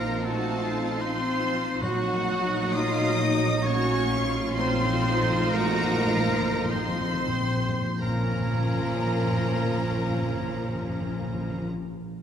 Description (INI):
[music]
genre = classical, slow romantic movement for symphony orchestra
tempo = 43-78 BPM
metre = 3/4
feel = rubato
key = Bb minor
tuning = A4 = 436 Hz
[part]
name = warm studio violin section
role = melody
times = 0.0-11.7 s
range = Gb5 to Eb6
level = -34 LUFS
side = left 5 dB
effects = none
[part]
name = clear clarinet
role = second line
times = 0.0-11.7 s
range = Db4 to Eb4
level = -38 LUFS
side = left 1 dB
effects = none
[part]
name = clear oboe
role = second line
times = 0.0-11.7 s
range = Gb4 to Eb5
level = -34 LUFS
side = right 2 dB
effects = none
[part]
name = rich studio violin section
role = second line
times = 0.0-11.6 s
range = Eb4 to Bb4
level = -36 LUFS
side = left 2 dB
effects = none
[part]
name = small flute group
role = second line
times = 0.0-11.6 s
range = Gb4 to Bb5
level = -34 LUFS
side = right 3 dB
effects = none
[part]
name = mellow bassoon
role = accompaniment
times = 0.0-11.7 s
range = F3 to Gb3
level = -36 LUFS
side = right 2 dB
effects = none
[part]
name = rich studio viola section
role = accompaniment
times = 0.0-11.7 s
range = F3 to Db4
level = -33 LUFS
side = right 1 dB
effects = none
[part]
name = warm French horn section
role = sustained chords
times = 0.0-11.7 s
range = Gb3 to Eb4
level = -32 LUFS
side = left 3 dB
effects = none
[part]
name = rich studio cello section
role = bass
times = 0.0-11.7 s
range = Bb2 to Gb4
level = -34 LUFS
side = right 3 dB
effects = none
[part]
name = warm studio double bass section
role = bass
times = 0.0-11.7 s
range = Bb1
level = -32 LUFS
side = right 2 dB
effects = none
[part]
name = timpani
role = percussion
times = 0.0-11.7 s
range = Bb2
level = -32 LUFS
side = left 1 dB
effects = none
[sound]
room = wet concert hall reverb, RT60 2.2 s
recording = none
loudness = -23 LUFS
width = side -8 dB against mid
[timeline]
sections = 0.0-8.0 A section; 8.0-11.6 B section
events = slowing down 0.6-8.0; timpani fill 4.6-8.0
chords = 0.0 F7/Bb; 1.8 Ebm/Bb; 4.6 F7/Bb; 8.0 Bbm